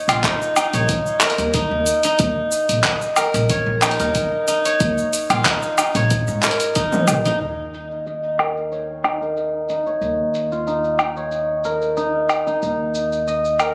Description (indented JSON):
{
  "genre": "organic downtempo",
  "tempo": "92 BPM",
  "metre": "4/4",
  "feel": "straight",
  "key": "unclear",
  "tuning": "A4 = 438 Hz",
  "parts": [
    { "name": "steel-string zither", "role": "arpeggios", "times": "0.0-13.7 s", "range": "Eb4 to Eb5", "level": "-22 LUFS", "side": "equal", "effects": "low-pass filter, tape echo" },
    { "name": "upright bass", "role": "bass", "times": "0.1-13.7 s", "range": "Bb1 to Ab2", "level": "-28 LUFS", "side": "equal", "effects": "none" },
    { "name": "deep house drum kit", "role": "drums", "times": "0.1-13.7 s", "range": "cabasa, handclaps, hi-hat, toms, woodblock", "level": "-22 LUFS", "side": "equal", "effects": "low-pass filter on hats, low-pass filter on perc, low-pass filter on snare, low-pass filter on toms, low-pass filter on room" },
    { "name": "electronic kick drum", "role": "drums", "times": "0.2-6.9 s", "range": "none", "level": "-27 LUFS", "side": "equal", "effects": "none" }
  ],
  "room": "wet lush hall reverb, RT60 2.3 s",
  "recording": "recorded on a phone in the room, club reverb",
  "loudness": "-20 LUFS",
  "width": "mono",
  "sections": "0.0-7.4 A section; 7.4-13.7 B section",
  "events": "drum fill 6.9-7.4; filter sweep on drum 7.4-13.7",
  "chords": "0.0 Eb5; 7.4 Eb7(no3)"
}